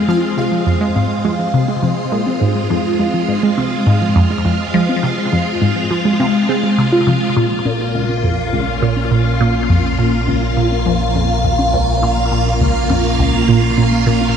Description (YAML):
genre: ambient, sequencer-driven space music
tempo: 103 BPM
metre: 4/4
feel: straight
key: F minor, Bb minor from 7.4 s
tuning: A4 = 439 Hz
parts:
  - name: phased string machine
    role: sustained chords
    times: 0.0-14.4 s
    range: Bb2 to F5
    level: -17 LUFS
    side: equal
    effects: ensemble chorus, phaser
  - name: warbly dusty pluck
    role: arpeggios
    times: 0.0-14.3 s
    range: F3 to Ab4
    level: -20 LUFS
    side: moving between left 3 dB and right 4 dB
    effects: chorus, auto-pan, ping-pong delay
  - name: resonant blip pluck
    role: riff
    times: 0.0-14.2 s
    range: Db2 to C4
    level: -17 LUFS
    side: equal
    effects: phaser, ping-pong delay
  - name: pulsing gated texture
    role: texture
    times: 0.0-14.4 s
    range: F5 to Bb5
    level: -29 LUFS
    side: right 4 dB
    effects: chorus, built-in reverb
  - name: warm sub bass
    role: bass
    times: 7.4-14.4 s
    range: Bb1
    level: -22 LUFS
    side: equal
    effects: none
room: wet plate reverb, RT60 3.3 s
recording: none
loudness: -13 LUFS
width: side -8 dB against mid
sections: 0.0-7.4 A section; 7.4-14.4 B section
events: filter sweep on synth arpeggio sound 0.0-7.4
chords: 0.0 Fm; 7.4 Bbm